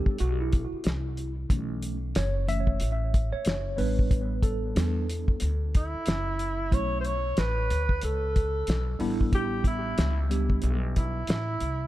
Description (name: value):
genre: hip hop, jazz-hop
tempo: 92 BPM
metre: 4/4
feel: swing 60% on 16ths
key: B minor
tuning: A4 = 439 Hz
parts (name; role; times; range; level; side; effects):
- mellow tine electric piano; accompaniment; 0.0-10.8 s; E3 to E5; -32 LUFS; right 1 dB; medium stereo tremolo, analog delay
- upright bass; bass; 0.0-11.9 s; F#1 to E2; -29 LUFS; equal; none
- cloth-damped thuddy drum kit; drums; 0.1-11.8 s; hi-hat, kick drum, snare drum; -27 LUFS; equal; none
- breathy alto saxophone; melody; 5.8-11.9 s; E4 to C#5; -31 LUFS; right 1 dB; analog delay
room: little or no reverb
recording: echo-heavy mix, faint mains hum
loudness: -25 LUFS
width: side -15 dB against mid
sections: 0.0-6.7 A section; 6.7-11.9 B section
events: tine electric piano solo 0.0-6.7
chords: 0.0 A7sus2 (rootless); 1.5 B9sus4; 3.8 A9sus4; 6.7 B9sus4; 9.0 A9sus4